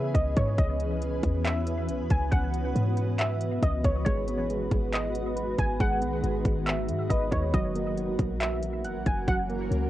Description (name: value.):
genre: hip hop, atmospheric cloud-rap.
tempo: 138 BPM.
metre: 4/4.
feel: half-time.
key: G# minor.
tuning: A4 = 441 Hz.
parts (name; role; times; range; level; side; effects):
warbly dusty pluck; melody; 0.0-9.9 s; C#5 to G#5; -33 LUFS; equal; chorus, low-pass filter, cassette tape, tape echo.
granular cloud pad; sustained chords; 0.0-9.9 s; D#3 to B4; -32 LUFS; equal; built-in reverb, sidechain pumping, cassette tape.
clean 808-style bass; bass; 0.0-9.9 s; E1 to C#3; -30 LUFS; equal; none.
downlifter and swell; sound effects; 0.0-0.6, 9.3-9.9 s; none; barely audible; none; none.
trap drum kit; drums; 0.1-9.8 s; handclaps, hi-hat, kick drum; -28 LUFS; equal; cassette tape.
soft electric-piano-like synth keys; arpeggios; 4.1-9.9 s; F#3 to F#5; -33 LUFS; right 3 dB; chorus, tremolo, low-pass filter, cassette tape, tape echo.
room: little or no reverb.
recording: home recording on cassette.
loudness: -25 LUFS.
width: side -14 dB against mid.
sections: 0.0-9.9 A section.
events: none.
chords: 0.0 C#m7; 4.1 G#m7; 7.5 F#7.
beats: 0.15 | 0.58 1.02 1.45 1.89 | 2.32 2.76 3.19 3.62 | 4.06 4.50 4.93 5.37 | 5.80 6.23 6.67 7.10 | 7.54 7.97 8.41 8.84 | 9.28 9.71.